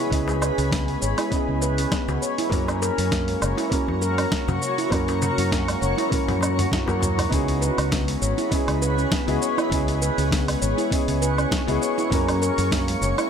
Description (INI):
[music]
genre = organic downtempo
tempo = 100 BPM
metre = 4/4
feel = swing 54% on 16ths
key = C# dorian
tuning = A4 = 439 Hz
[part]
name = felt-muted upright piano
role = accompaniment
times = 0.0-13.3 s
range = A#3 to D#5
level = -29 LUFS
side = left 3 dB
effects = vintage 12-bit sampler grit, sidechain pumping, ping-pong delay
[part]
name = granular cloud pad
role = sustained chords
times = 0.0-13.3 s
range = F#4 to C#6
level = -29 LUFS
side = equal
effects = built-in reverb, sidechain pumping
[part]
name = handpan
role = arpeggios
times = 0.0-13.3 s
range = G#3 to C#5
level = -26 LUFS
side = right 2 dB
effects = ping-pong delay
[part]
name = fretless electric bass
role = bass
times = 0.1-13.1 s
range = F#1 to F#2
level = -25 LUFS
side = equal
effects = ensemble chorus, sidechain pumping
[part]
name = dusty soul sampler-style drum kit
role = drums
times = 0.1-13.3 s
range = hi-hat, shaker, snare drum, toms, woodblock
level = -28 LUFS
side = equal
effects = none
[part]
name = electronic kick drum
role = drums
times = 0.1-12.8 s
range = none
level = -27 LUFS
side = equal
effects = none
[part]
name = darbuka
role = percussion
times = 0.3-7.1 s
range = none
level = -33 LUFS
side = left 3 dB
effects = none
[sound]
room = light reverb, digital ambience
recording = none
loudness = -20 LUFS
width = side -7 dB against mid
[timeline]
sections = 0.0-7.3 A section; 7.3-13.3 B section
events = drum fill 6.1-7.3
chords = 0.0 C#m7; 2.5 F#; 7.3 C#m7; 12.1 F#